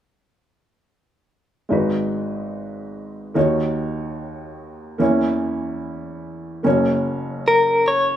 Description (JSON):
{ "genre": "acoustic folk-pop ballad", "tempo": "73 BPM", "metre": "4/4", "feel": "straight", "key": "G# minor", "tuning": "A4 = 438 Hz", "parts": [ { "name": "felt-muted upright piano", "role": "accompaniment", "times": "1.7-8.2 s", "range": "F#1 to C#5", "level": "-21 LUFS", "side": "equal", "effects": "none" }, { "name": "direct-recorded clean electric guitar", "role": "melody", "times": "7.5-8.2 s", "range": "A#4 to C#5", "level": "-14 LUFS", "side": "left 2 dB", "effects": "tremolo" } ], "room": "moderate large studio reverb, RT60 0.9 s", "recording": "minimal, uncompressed stereo recording", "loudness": "-18 LUFS", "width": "side -10 dB against mid", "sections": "1.7-8.2 A section", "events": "none", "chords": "1.7 G#m7; 3.4 D#m7; 5.0 A#dim/E; 6.7 F#" }